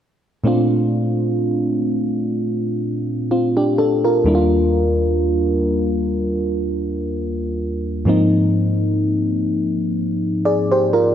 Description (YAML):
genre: R&B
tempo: 63 BPM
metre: 4/4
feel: swing 54% on 16ths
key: Bb major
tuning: A4 = 440 Hz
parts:
  - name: mellow FM electric piano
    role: solo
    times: 0.4-11.1 s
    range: Eb2 to D5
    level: -16 LUFS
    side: equal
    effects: chorus
room: moderate lush hall reverb, RT60 2.9 s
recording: none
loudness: -16 LUFS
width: side -9 dB against mid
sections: 0.4-11.1 A section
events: none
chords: 0.4 Bbmaj9; 4.3 Ebmaj9; 8.1 Ab69